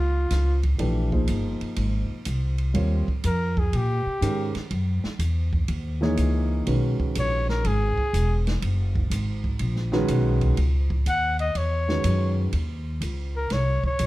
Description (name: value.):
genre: modal jazz.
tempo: 123 BPM.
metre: 4/4.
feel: swing 67% on 8ths.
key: unclear.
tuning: A4 = 440 Hz.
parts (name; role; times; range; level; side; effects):
warm trumpet; melody; 0.0-14.1 s; F4 to Gb5; -27 LUFS; left 1 dB; none.
warm grand piano; accompaniment; 0.0-12.5 s; Eb3 to Db5; -27 LUFS; right 1 dB; none.
upright bass; bass; 0.0-14.1 s; Fb1 to Bb2; -24 LUFS; equal; none.
open jazz drum kit; drums; 0.3-14.1 s; hi-hat, kick drum, ride cymbal, snare drum; -32 LUFS; right 1 dB; none.
room: light reverb.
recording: dark, warm production.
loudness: -22 LUFS.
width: side -17 dB against mid.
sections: 0.0-14.1 A section.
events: trumpet solo 0.0-14.1.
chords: 0.0 Eb13sus4; 4.7 Gb13sus4; 12.5 Eb7(no3).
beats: 0.31 | 0.80 1.29 1.78 2.27 | 2.75 3.24 3.73 4.22 | 4.71 5.20 5.69 6.18 | 6.67 7.16 7.65 8.13 | 8.62 9.11 9.60 10.09 | 10.58 11.07 11.55 12.04 | 12.53 13.02 13.51 13.99.